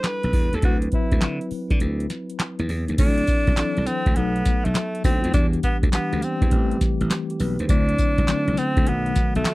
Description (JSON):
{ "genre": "R&B, new jack swing", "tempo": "102 BPM", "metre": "4/4", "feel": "swing 66% on 16ths", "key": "unclear", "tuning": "A4 = 436 Hz", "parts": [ { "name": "bright alto saxophone", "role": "melody", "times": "0.0-9.5 s", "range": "A3 to B4", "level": "-26 LUFS", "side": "equal", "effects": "slapback echo" }, { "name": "mellow tine electric piano", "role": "accompaniment", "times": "0.0-9.5 s", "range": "D3 to C5", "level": "-27 LUFS", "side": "left 2 dB", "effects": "medium stereo tremolo" }, { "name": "booming analog drum machine", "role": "drums", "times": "0.0-9.5 s", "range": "crash cymbal, handclaps, hi-hat, kick drum, snare drum, tambourine", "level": "-21 LUFS", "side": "equal", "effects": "none" }, { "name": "slap bass", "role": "bass", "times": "0.2-9.4 s", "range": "A1 to D3", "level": "-25 LUFS", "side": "equal", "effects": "none" } ], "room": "little or no reverb", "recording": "dry, close 1970s-style studio recording", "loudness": "-19 LUFS", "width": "side -20 dB against mid", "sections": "0.0-3.0 A section; 3.0-9.5 B section", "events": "break 1.8-3.0", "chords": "0.0 A7sus4; 0.6 D13; 3.0 D9; 4.2 B7; 5.3 Em7; 6.5 Am7; 7.7 D9; 8.9 B7", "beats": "0.04 | 0.63 1.22 1.80 2.39 | 2.98 3.57 4.16 4.75 | 5.33 5.92 6.51 7.10 | 7.69 8.28 8.86 9.45" }